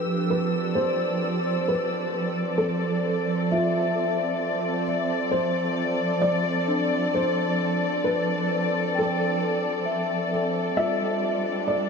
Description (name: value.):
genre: ambient.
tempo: 66 BPM.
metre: 3/4.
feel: straight.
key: unclear.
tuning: A4 = 440 Hz.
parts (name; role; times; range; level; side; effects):
felt-muted upright piano; melody; 0.0-11.9 s; F4 to E5; -28 LUFS; equal; ping-pong delay.
muted studio string section; sustained chords; 0.0-11.9 s; F3 to E6; -25 LUFS; equal; none.
large celesta; arpeggios; 0.0-11.9 s; D4 to G5; -31 LUFS; left 2 dB; ping-pong delay.
room: wet huge ambient reverb, RT60 9.7 s.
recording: dark, warm production.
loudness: -22 LUFS.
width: side -5 dB against mid.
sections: 0.0-11.9 A section.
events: fade-out on celesta 0.0-11.9.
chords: 0.0 Fmaj9; 10.8 Gsus2.